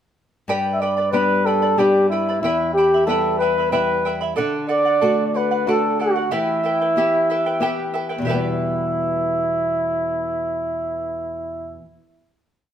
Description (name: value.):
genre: andean folk, Andean ensemble.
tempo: 93 BPM.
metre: 3/4.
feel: straight.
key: E minor.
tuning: A4 = 440 Hz.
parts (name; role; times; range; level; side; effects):
charango; accompaniment; 0.5-11.9 s; E4 to B5; -25 LUFS; right 2 dB; none.
nylon-string guitar; accompaniment; 0.5-11.9 s; E2 to G4; -25 LUFS; left 2 dB; none.
trumpet with bucket mute; melody; 0.7-11.8 s; E4 to E5; -19 LUFS; equal; none.
room: wet stone room reverb, RT60 1.1 s.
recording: band playing live in one room.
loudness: -18 LUFS.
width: side -9 dB against mid.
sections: 0.5-8.2 A section; 8.2-12.1 final chord.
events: none.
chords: 0.5 G; 2.4 Em; 4.4 D; 6.3 Em.